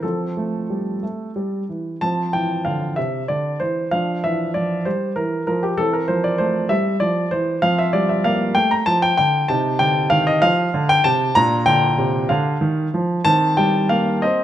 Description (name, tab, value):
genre	classical-period piano sonatina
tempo	64 BPM (dotted quarters)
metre	6/8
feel	rubato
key	F major, Bb major from 9.5 s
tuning	A4 = 440 Hz
part	warm grand piano	solo	0.0-14.4 s	Bb2 to Bb5	-17 LUFS	equal	none
room	moderate recital hall reverb, RT60 1.6 s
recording	close, detailed microphones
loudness	-17 LUFS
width	side -11 dB against mid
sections	0.0-2.0 A section; 2.0-14.4 A section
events	none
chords	0.0 F; 2.0 F5; 3.9 G5; 5.8 C/E; 7.6 F; 9.5 F5/C; 11.4 Bb; 13.3 Cm/Eb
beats	| 0.03 1.02 | 2.02 2.97 | 3.92 4.86 | 5.79 6.71 | 7.63 8.55 | 9.48 10.42 | 11.36 12.29 | 13.25 14.22